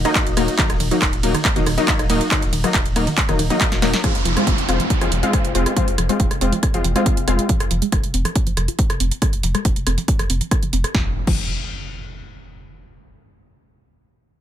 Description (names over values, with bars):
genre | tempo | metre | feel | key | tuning
driving peak-time techno | 139 BPM | 4/4 | straight | F phrygian | A4 = 435 Hz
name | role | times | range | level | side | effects
warbly dusty pluck | riff | 0.0-11.5 s | Eb3 to F4 | -26 LUFS | equal | chorus, tube saturation, sidechain pumping, tape echo
rave stab | stabs | 0.0-7.5 s | Gb3 to F4 | -22 LUFS | left 2 dB | chorus, built-in reverb, sidechain pumping, ping-pong delay
saturated sub bass | bass | 0.0-11.5 s | Eb1 to F1 | -23 LUFS | equal | sidechain pumping, low-pass filter
techno drum kit | drums | 0.1-11.4 s | crash cymbal, handclaps, hi-hat, ride cymbal, rim click, snare drum | -23 LUFS | right 1 dB | none
electronic kick drum | drums | 0.2-11.4 s | none | -20 LUFS | equal | none
downlifter and impact | sound effects | 4.0-7.5, 10.9-12.7 s | none | -28 LUFS | right 1 dB | none
room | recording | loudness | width
light reverb, digital ambience | none | -16 LUFS | side -10 dB against mid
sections
0.0-4.0 A section; 4.0-10.9 B section; 10.9-12.7 C section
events
drop 0.0-4.0; drum fill 3.7-4.0; filter sweep on synth arpeggio sound 4.0-10.9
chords
0.0 Ebm; 4.0 Fm; 10.9 N.C.